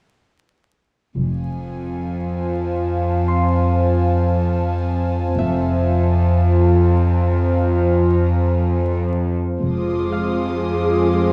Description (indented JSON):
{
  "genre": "cinematic",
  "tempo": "57 BPM",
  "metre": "4/4",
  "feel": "straight",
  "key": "F harmonic minor",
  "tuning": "A4 = 440 Hz",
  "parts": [
    { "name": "deep dark ambient pad", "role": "sustained chords", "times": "1.9-11.3 s", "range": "F4 to F5", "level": "-25 LUFS", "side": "equal", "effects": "chorus, built-in reverb" },
    { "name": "dark symphonic double bass section", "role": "bass", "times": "1.2-10.6 s", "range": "F1", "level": "-28 LUFS", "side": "equal", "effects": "none" },
    { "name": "warm symphonic cello section", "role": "bass", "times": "1.2-11.3 s", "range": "F2", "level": "-24 LUFS", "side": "equal", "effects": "none" },
    { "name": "organ-like drone", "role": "drone", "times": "2.6-11.3 s", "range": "F2", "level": "-22 LUFS", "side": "equal", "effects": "ensemble chorus, built-in reverb" },
    { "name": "warm studio violin section", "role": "texture", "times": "1.2-11.3 s", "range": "Ab5 to Eb6", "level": "-36 LUFS", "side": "equal", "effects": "none" },
    { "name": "Celtic harp", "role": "texture", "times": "3.3-11.3 s", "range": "E5 to C6", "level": "-33 LUFS", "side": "equal", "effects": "none" },
    { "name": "dark symphonic viola section", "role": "accompaniment", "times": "9.6-11.3 s", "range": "Ab3 to F4", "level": "-23 LUFS", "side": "equal", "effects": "none" }
  ],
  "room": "wet scoring stage reverb, RT60 2.0 s",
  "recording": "vinyl crackle",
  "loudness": "-19 LUFS",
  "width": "mono",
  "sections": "1.2-9.6 A section; 9.6-11.3 B section",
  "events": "none",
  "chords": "1.2 Fm"
}